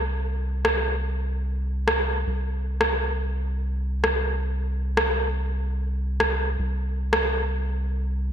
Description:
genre	organic downtempo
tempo	111 BPM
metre	4/4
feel	swing 55% on 16ths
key	unclear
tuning	A4 = 440 Hz
part	round analog bass	bass	0.0-8.3 s	C2	-26 LUFS	equal	none
part	electronic rim click	drums	0.6-7.2 s	none	-25 LUFS	equal	low-pass filter on snare, gated reverb
room	moderate lush hall reverb, RT60 2.3 s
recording	bright 1980s-style digital production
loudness	-23 LUFS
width	side -9 dB against mid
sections	0.0-8.3 A section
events	none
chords	none

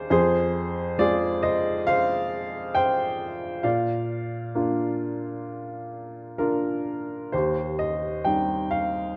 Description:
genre	classical, lyrical solo piano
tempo	66 BPM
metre	4/4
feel	rubato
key	Eb major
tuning	A4 = 438 Hz
part	warm upright piano	solo	0.0-9.2 s	Eb2 to G5	-26 LUFS	equal	none
room	light reverb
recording	dark, warm production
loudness	-26 LUFS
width	mono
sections	0.0-7.3 A section; 7.3-9.2 B section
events	none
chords	0.1 Fm; 3.6 Bb; 7.3 Eb6

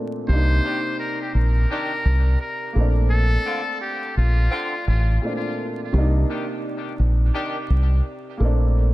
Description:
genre	hip hop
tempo	85 BPM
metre	4/4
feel	swing 63% on 16ths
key	C dorian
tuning	A4 = 439 Hz
part	dark upright piano	accompaniment	0.0-8.9 s	Bb2 to Eb4	-28 LUFS	right 1 dB	high-pass filter, low-pass filter
part	trumpet with metal mute	melody	0.3-5.2 s	F4 to C5	-27 LUFS	left 1 dB	high-pass filter, low-pass filter, ping-pong delay
part	deep dub fingered electric bass	bass	0.3-8.9 s	A1 to C2	-17 LUFS	equal	none
part	clear horn section	stabs	0.6-7.6 s	D3 to G4	-32 LUFS	left 2 dB	high-pass filter, low-pass filter, ping-pong delay
room	light reverb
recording	vinyl crackle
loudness	-19 LUFS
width	side -18 dB against mid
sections	0.3-8.9 A section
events	none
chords	0.3 Cm9; 2.8 Bbmaj9; 5.9 Cm9; 8.4 Bbmaj9

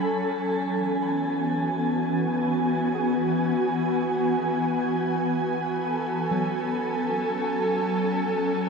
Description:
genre	ambient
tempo	free time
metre	none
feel	none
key	unclear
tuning	A4 = 443 Hz
part	ethereal airy pad	sustained chords	0.0-8.7 s	E3 to G#5	-24 LUFS	equal	ensemble chorus, built-in reverb
part	muted symphonic violin section	texture	0.0-0.1, 5.8-8.7 s	A4	-31 LUFS	right 1 dB	none
part	soft round pluck	arpeggios	1.0-8.7 s	F#3 to B5	-38 LUFS	equal	none
room	wet shimmer reverb, RT60 7.1 s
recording	none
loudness	-23 LUFS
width	side -4 dB against mid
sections	0.1-8.7 A section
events	none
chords	0.1 Eadd9; 5.8 F#madd9

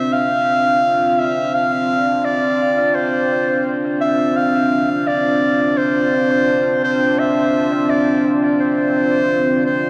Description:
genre	ambient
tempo	free time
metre	none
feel	none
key	D minor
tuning	A4 = 438 Hz
part	clear clarinet	melody	0.0-9.9 s	C5 to F5	-19 LUFS	equal	dub echo
part	deep dark ambient pad	sustained chords	0.0-9.9 s	C4 to D5	-20 LUFS	equal	chorus, built-in reverb
room	wet plate reverb, RT60 3.5 s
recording	dreamy mix soaked in reverb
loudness	-17 LUFS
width	mono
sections	0.0-9.9 A section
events	none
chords	0.0 Dm7

